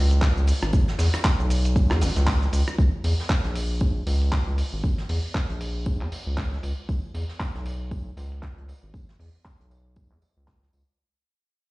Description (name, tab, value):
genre	deep house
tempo	117 BPM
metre	4/4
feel	swing 58% on 16ths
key	unclear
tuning	A4 = 444 Hz
part	round analog bass	bass	0.0-10.8 s	G#1 to E2	-24 LUFS	equal	none
part	dusty soul sampler-style drum kit	drums	0.1-10.9 s	handclaps, hi-hat, rim click, shaker	-31 LUFS	equal	low-pass filter on hats, low-pass filter on perc, low-pass filter on snare, low-pass filter on room
part	electronic kick drum	drums	0.2-10.6 s	none	-24 LUFS	equal	none
part	jazz brush drum kit	drums	0.2-10.9 s	hi-hat, snare drum, tambourine	-40 LUFS	right 1 dB	sidechain pumping on hats, high-pass filter on hats, high-pass filter on snare, sidechain pumping on perc, high-pass filter on perc, high-pass filter on room
room	little or no reverb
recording	played on a big sound system in a bare room, cassette tape, stone room reverb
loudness	-22 LUFS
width	side -21 dB against mid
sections	0.0-2.8 A section; 2.8-11.0 B section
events	drop 0.0-2.8; fade-out 2.8-11.0; filter sweep on drum 2.8-11.0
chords	none